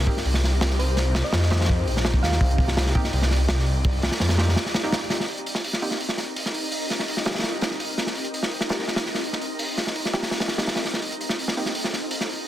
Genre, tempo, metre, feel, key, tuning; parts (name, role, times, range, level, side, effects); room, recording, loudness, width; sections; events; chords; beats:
drum and bass, jungle; 167 BPM; 4/4; straight; C dorian; A4 = 441 Hz
thumb-piano-like synth pluck; melody; 0.0-2.7 s; C5 to F5; -33 LUFS; left 1 dB; chorus, cassette tape, dub echo
ethereal airy pad; sustained chords; 0.0-12.5 s; C4 to D5; -33 LUFS; equal; ensemble chorus, built-in reverb, vintage 12-bit sampler grit
detuned saw bass; bass; 0.0-4.6 s; Bb1 to F2; -22 LUFS; equal
twinkling granular texture; texture; 0.0-12.5 s; Eb4 to Eb5; -36 LUFS; right 1 dB; built-in reverb
filtered dub chord stab; stabs; 0.1-11.7 s; Bb3 to G4; -34 LUFS; right 1 dB; chorus, dub echo
crunchy breakbeat drum kit; drums; 0.1-12.4 s; hi-hat, kick drum, snare drum; -24 LUFS; equal; high-pass filter on kick, high-pass filter on hats, high-pass filter on snare, high-pass filter on room
light reverb, small room ambience; dense, heavily limited modern master; -21 LUFS; side -12 dB against mid
0.0-5.3 A section; 5.3-12.5 B section
drop 0.0-5.3; break 4.6-5.3
0.0 Cm7
0.25 0.61 | 0.97 1.33 1.69 2.05 | 2.41 2.77 3.13 3.49 | 3.85 4.21 4.57 4.92 | 5.28 5.64 6.00 6.36 | 6.72 7.08 7.44 7.80 | 8.16 8.52 8.88 9.24 | 9.60 9.96 10.31 10.67 | 11.03 11.39 11.75 12.11 | 12.47